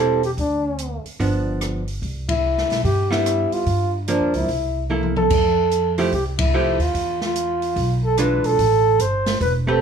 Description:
jazz, small-group swing and bop; 146 BPM; 4/4; swing 64% on 8ths; C major; A4 = 440 Hz
breathy flugelhorn; melody; 0.0-9.8 s; D4 to C5; -20 LUFS; right 1 dB
archtop guitar, miked and amplified; accompaniment; 0.0-9.8 s; E3 to B4; -23 LUFS; right 4 dB
upright bass; bass; 0.0-9.8 s; E1 to G2; -24 LUFS; equal
open jazz drum kit; drums; 0.2-9.5 s; crash cymbal, hi-hat, kick drum, ride cymbal, rim click, snare drum, toms; -27 LUFS; equal
little or no reverb; small room ambience; -18 LUFS; side -7 dB against mid
0.0-5.3 A section; 5.3-9.8 B section
band accent 2.2, 6.3; drum fill 4.9-5.3
0.4 N.C.; 1.2 G7; 2.0 Cmaj7; 3.7 Gm7; 4.5 C6; 5.3 Fmaj9; 6.9 E7b9; 8.6 Am7

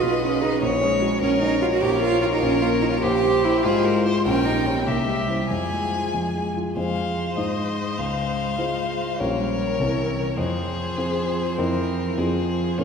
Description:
quick classical-period movement for piano quartet; 99 BPM (dotted quarters); 6/8; rubato; F minor; A4 = 440 Hz
rich violin; melody; 0.0-12.8 s; C5 to Ab5; -27 LUFS; left 5 dB
clear violin; second line; 0.0-12.8 s; F4 to C#5; -29 LUFS; left 2 dB
warm cello; second line; 0.0-12.8 s; E3 to G4; -25 LUFS; right 4 dB
warm concert grand piano; accompaniment; 0.0-12.8 s; A#1 to Db5; -24 LUFS; left 1 dB
wet church reverb, RT60 2.8 s; minimal, uncompressed stereo recording; -20 LUFS; side -6 dB against mid
0.0-6.8 A section; 6.8-12.8 B section
0.0 G#m/B; 0.6 F#/A#; 1.8 Bbm; 3.0 C7/Bb; 3.6 Fm/Ab; 4.2 Gdim/Bb; 4.9 C; 5.5 Fm; 7.4 Ab; 8.0 Dbmaj7; 9.2 Gdim/Bb; 9.8 C7; 10.4 Fm; 11.6 C7/F; 12.2 Fm

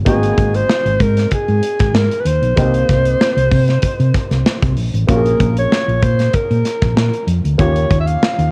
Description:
polished 1980s jazz-funk pop; 96 BPM; 4/4; swing 54% on 16ths; Bb minor; A4 = 438 Hz
warm baby grand piano; accompaniment; 0.0-8.5 s; Bb3 to Ab4; -26 LUFS; equal; lush chorus, cassette tape
hollow-body short-scale fingered electric bass; bass; 0.0-8.5 s; Ab1 to C3; -18 LUFS; equal
breathy alto saxophone; melody; 0.1-8.5 s; Ab4 to F5; -21 LUFS; equal; cassette tape
modern studio drum kit; drums; 0.1-8.5 s; hi-hat, kick drum, snare drum; -20 LUFS; equal; cassette tape
light reverb, small room ambience; home recording on cassette; -15 LUFS; mono
0.0-8.5 A section
0.1 Ab9; 2.6 Cm7; 5.1 Bbm7; 7.6 Eb7

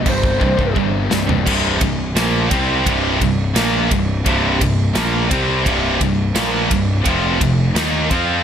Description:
heavy metal; 86 BPM; 4/4; straight; C minor; A4 = 438 Hz
scooped high-gain guitar; riff; 0.0-8.4 s; C2 to F4; -21 LUFS; left 7 dB; distortion
tight distorted guitar; riff; 0.0-8.4 s; C2 to F4; -21 LUFS; right 10 dB; distortion
tight distorted guitar; riff; 0.0-8.4 s; C2 to F4; -24 LUFS; left 1 dB; distortion
fuzz picked electric bass; bass; 0.0-8.4 s; C1 to F2; -22 LUFS; equal; overdrive
lead guitar through a small cranked amp; melody; 0.1-0.7 s; C5; -22 LUFS; left 1 dB; overdrive, ping-pong delay
modern studio drum kit; drums; 0.1-8.3 s; crash cymbal, kick drum, ride cymbal, snare drum, toms; -21 LUFS; equal
little or no reverb; -14 LUFS; side -8 dB against mid
0.0-1.5 A section; 1.5-8.4 B section
drum fill 0.7-1.5
0.0 C5; 7.1 F5

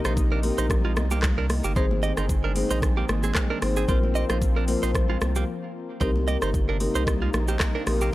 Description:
afrobeats; 113 BPM; 4/4; swing 55% on 16ths; C minor; A4 = 437 Hz
marimba with medium mallets; accompaniment; 0.0-8.1 s; C4 to C5; -30 LUFS; left 2 dB
lush unison pad; sustained chords; 0.0-8.1 s; C3 to Eb4; -34 LUFS; left 2 dB; chorus
direct-recorded clean electric guitar; riff; 0.1-8.1 s; Ab3 to Eb5; -31 LUFS; right 6 dB; tape echo
saturated sub bass; bass; 0.1-8.1 s; G1 to C2; -26 LUFS; equal
afro-pop drum kit; drums; 0.1-8.1 s; handclaps, hi-hat, kick drum, rim click, shaker; -26 LUFS; equal
congas; percussion; 0.4-8.0 s; -35 LUFS; left 2 dB
little or no reverb; dry, gritty hardware recording, transformer saturation; -22 LUFS; side -16 dB against mid
0.0-8.1 A section
break 5.5-6.0
0.0 Cm7; 1.8 Ab; 3.9 Bbsus2; 6.0 Cm7

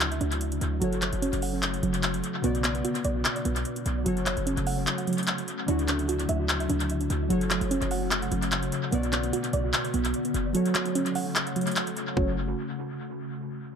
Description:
hip hop, trap; 148 BPM; 4/4; half-time; F# minor; A4 = 436 Hz
warbly lo-fi synth keys; accompaniment; 0.0-12.4 s; B2 to D5; -32 LUFS; left 1 dB; chorus, low-pass filter
glassy FM pad; sustained chords; 0.0-12.4 s; C#3 to F#4; -33 LUFS; left 2 dB; ensemble chorus, built-in reverb, low-pass filter
soft round pluck; arpeggios; 0.0-12.4 s; F#3 to F#5; -31 LUFS; right 5 dB; chorus, low-pass filter, dub echo
hard-hitting 808-style bass; bass; 0.0-12.5 s; F#1 to D2; -30 LUFS; equal
trap drum kit; drums; 0.0-12.3 s; handclaps, hi-hat, kick drum; -30 LUFS; left 1 dB; overdrive, dub echo
light reverb; echo-heavy mix; -25 LUFS; side -7 dB against mid
0.0-5.7 A section; 5.7-12.2 B section; 12.2-13.8 C section
kick muted 4.9-5.7, 10.5-12.2
0.0 Dadd9; 0.8 F#m; 2.4 Bm; 4.1 F#m; 5.7 Dadd9; 7.3 F#m; 8.9 Bm; 10.5 F#m

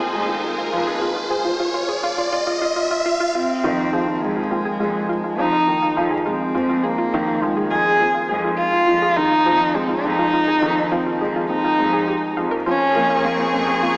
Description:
piano and strings electronica; 103 BPM; 4/4; straight; A4 = 438 Hz
bright symphonic string section; sustained chords; 0.0-1.0, 12.7-14.0 s; Bb3 to Db6; -24 LUFS; equal
warbly dusty pluck; arpeggios; 0.0-13.9 s; C4 to F5; -26 LUFS; equal; chorus, analog delay
dark upright piano; riff; 0.0-14.0 s; Eb3 to Db4; -23 LUFS; equal; wide subtle chorus, analog delay
riser; sound effects; 0.0-3.3 s; -23 LUFS; equal
warm studio cello section; bass; 0.1-13.7 s; F2; -29 LUFS; equal; high-pass filter
dark cello; melody; 3.3-14.0 s; Ab3 to Ab4; -19 LUFS; equal; analog delay
wet plate reverb, RT60 2.7 s; dreamy mix soaked in reverb, small speaker sound; -17 LUFS; side -27 dB against mid
0.0-3.3 A section; 3.3-14.0 B section
build-up 0.0-3.3; riser 0.0-3.3; drop 3.3-14.0
0.0 Fm7; 12.7 Bbmadd9/F

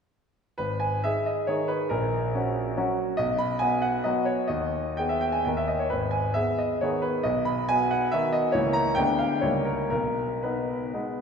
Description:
classical, romantic triple-time dance for piano with dotted rhythms; 112-151 BPM; 3/4; rubato; G# minor; A4 = 440 Hz
clear concert grand piano; solo; 0.6-11.2 s; G#1 to B5; -24 LUFS; equal
wet church reverb, RT60 2.8 s; recorded in a church or concert hall; -24 LUFS; side -6 dB against mid
0.6-11.2 A section
0.6 G#5; 1.9 F#/A#; 3.2 B5; 4.5 G#m/D#; 5.5 D#5; 5.9 G#m; 7.2 B; 8.5 A#dim/C#; 9.0 Ddim7; 9.4 D#7/C#; 9.9 G#m/B

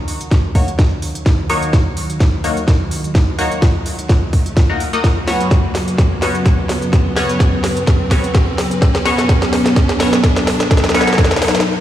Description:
bass house; 127 BPM; 4/4; swing 55% on 16ths; A4 = 436 Hz
dark analog pad; sustained chords; 0.0-11.6 s; Eb3 to Cb5; -20 LUFS; equal; chorus, sidechain pumping
riser; sound effects; 0.9-11.7 s; -25 LUFS; right 1 dB
garage drum kit; drums; 0.1-11.7 s; hi-hat, snare drum; -20 LUFS; equal
electronic kick drum; drums; 0.3-11.3 s; -14 LUFS; equal
band-passed chord stab; stabs; 0.6-11.1 s; Bb3 to Eb5; -22 LUFS; left 2 dB; phaser, sidechain pumping, dub echo
light reverb; played on a big sound system in a bare room, large studio reverb; -12 LUFS; side -12 dB against mid
0.0-11.8 A section
build-up 0.0-11.8; drum fill 0.0-11.7; filter sweep on analog synth pad 0.0-11.8; riser 0.9-11.7; break 11.7
0.0 Ebm7; 5.0 Gbsus4

